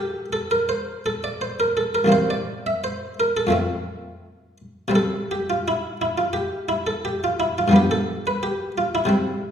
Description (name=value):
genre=classical, baroque-style suite movement for harpsichord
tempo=85 BPM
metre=4/4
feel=rubato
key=F major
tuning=A4 = 439 Hz
part: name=buff-stop harpsichord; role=solo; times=0.0-9.5 s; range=C2 to E5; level=-20 LUFS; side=equal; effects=none
room=wet recital hall reverb, RT60 1.5 s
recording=heard from further back in the room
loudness=-20 LUFS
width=side -8 dB against mid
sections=0.0-9.5 A section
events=none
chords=0.0 F; 2.1 C7; 3.5 F; 5.0 C5; 7.7 G7